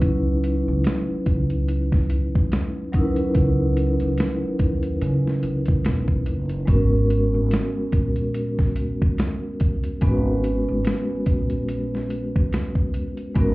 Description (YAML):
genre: lo-fi hip hop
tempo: 72 BPM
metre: 4/4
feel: swing 57% on 16ths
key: G# minor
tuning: A4 = 441 Hz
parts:
  - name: vibraphone with medium mallets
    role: accompaniment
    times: 0.0-13.5 s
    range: F#3 to B4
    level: -24 LUFS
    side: equal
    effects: cassette tape, plate reverb
  - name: upright bass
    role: bass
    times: 0.0-13.5 s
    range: E1 to C#3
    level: -23 LUFS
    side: equal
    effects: none
  - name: boom bap sampler-style drum kit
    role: drums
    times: 0.0-13.5 s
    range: hi-hat, kick drum, snare drum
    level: -21 LUFS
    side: equal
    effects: none
room: moderate studio reverb, RT60 0.5 s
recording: heard muffled through a wall, club reverb, vinyl crackle, EQ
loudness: -20 LUFS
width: side -20 dB against mid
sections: 0.0-13.5 A section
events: none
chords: 0.0 C#m11; 6.7 G#m11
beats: | 0.02 0.85 1.69 2.52 | 3.35 4.19 5.02 5.85 | 6.69 7.52 8.35 9.19 | 10.02 10.85 11.69 12.52 | 13.35